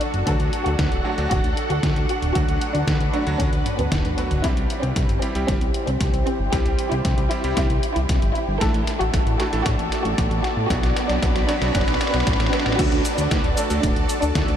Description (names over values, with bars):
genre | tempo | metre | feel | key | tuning
italo disco | 115 BPM | 4/4 | straight | unclear | A4 = 440 Hz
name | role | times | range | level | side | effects
dark studio violin section | melody | 0.0-14.5 s | B3 to A4 | -26 LUFS | equal | ping-pong delay
lush unison pad | sustained chords | 0.0-14.6 s | D4 to B5 | -28 LUFS | equal | chorus, phaser
detuned 8-bit digital drum machine | drums | 0.0-14.6 s | cabasa, crash cymbal, hi-hat, snare drum, toms | -29 LUFS | left 1 dB | high-pass filter on hats, studio reverb, high-pass filter on snare, high-pass filter on toms, high-pass filter on cymbals, high-pass filter on perc
fat analog bass | bass | 0.1-14.6 s | D1 to A2 | -24 LUFS | equal | none
bright electric grand piano | stabs | 0.3-13.9 s | F#3 to A4 | -30 LUFS | right 2 dB | vintage 12-bit sampler grit, low-pass filter, ping-pong delay
electronic kick drum | drums | 0.3-14.5 s | none | -24 LUFS | equal | studio reverb
riser | sound effects | 7.8-12.8 s | none | -32 LUFS | right 4 dB | none
room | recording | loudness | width
moderate huge ambient reverb, RT60 8.7 s | dreamy mix soaked in reverb | -19 LUFS | side -9 dB against mid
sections
0.0-4.4 A section; 4.4-12.8 B section; 12.8-14.6 C section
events
drum fill 3.7-4.4, 4.4-12.8; filter sweep on analog synth pad 4.4-12.8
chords
0.3 D; 4.4 C; 8.6 Asus4; 10.7 Bm; 12.8 D